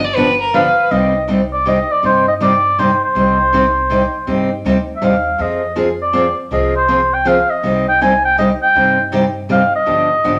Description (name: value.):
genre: acoustic string swing (jazz manouche).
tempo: 161 BPM.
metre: 3/4.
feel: swing 62% on 8ths.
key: C minor.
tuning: A4 = 440 Hz.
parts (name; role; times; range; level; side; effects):
bright violin; second line; 0.0-0.8 s; Bb4 to D5; -19 LUFS; equal; none.
upright bass; bass; 0.0-10.4 s; G1 to G2; -29 LUFS; equal; none.
picked steel-string acoustic guitar; accompaniment; 0.2-10.4 s; C3 to Ab4; -19 LUFS; equal; none.
warm oboe; melody; 0.5-10.4 s; C5 to Ab5; -16 LUFS; equal; none.
room: wet large studio reverb, RT60 0.8 s.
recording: none.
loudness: -15 LUFS.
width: mono.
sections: 0.9-10.4 A section.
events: none.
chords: 0.0 G7; 0.9 Cm; 5.4 Fm; 7.6 Cm; 9.9 G7.